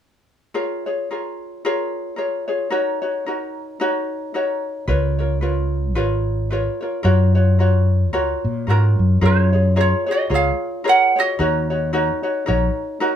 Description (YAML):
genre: Hawaiian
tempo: 111 BPM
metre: 4/4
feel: swing 58% on 8ths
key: F# major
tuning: A4 = 444 Hz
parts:
  - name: ukulele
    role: accompaniment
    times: 0.5-13.2 s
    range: D#4 to C#5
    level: -22 LUFS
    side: left 1 dB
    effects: none
  - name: fretless electric bass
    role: bass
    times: 4.9-12.7 s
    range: G#1 to A#2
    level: -17 LUFS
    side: equal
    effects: none
  - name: ukulele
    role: melody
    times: 8.7-12.2 s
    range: C#4 to F#5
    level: -19 LUFS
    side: right 3 dB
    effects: none
room: moderate studio ambience, RT60 0.5 s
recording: band playing live in one room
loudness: -17 LUFS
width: side -9 dB against mid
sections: 0.5-9.2 A section; 9.2-13.2 B section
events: none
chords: 0.5 A#m7/E#; 2.7 D#m7; 4.9 C#6; 7.1 F#maj9; 11.4 D#m7